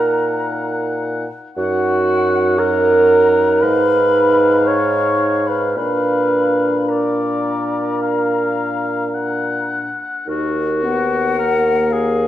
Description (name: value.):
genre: classical, slow romantic movement for wind quintet.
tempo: 52-59 BPM.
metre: 4/4.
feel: rubato.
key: Eb minor.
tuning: A4 = 440 Hz.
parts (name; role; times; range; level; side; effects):
mellow hollow silver concert flute; melody; 0.0-12.3 s; F5 to Db6; -24 LUFS; left 8 dB; none.
mellow oboe; second line; 0.0-12.3 s; Gb4 to Gb5; -24 LUFS; left 4 dB; none.
dark clarinet; accompaniment; 0.0-12.3 s; Gb4 to Db5; -17 LUFS; right 3 dB; none.
mellow French horn; accompaniment; 0.0-12.3 s; Bb3 to Eb4; -24 LUFS; left 3 dB; none.
mellow bassoon; bass; 0.0-12.3 s; Eb2 to Bb2; -21 LUFS; equal; none.
room: wet recital hall reverb, RT60 1.8 s.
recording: worn, warbling old tape, cassette tape, warbly pitch drift.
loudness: -14 LUFS.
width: side -12 dB against mid.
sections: 0.0-10.3 A section; 10.3-12.3 B section.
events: none.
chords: 0.0 Ebm/Bb; 1.6 Ebm/Gb; 3.6 Fm7b5/Ab; 5.8 Bb; 10.3 Ebm.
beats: 0.54 | 1.57 2.59 3.62 4.67 | 5.77 6.89 8.02 9.14 | 10.27 11.38.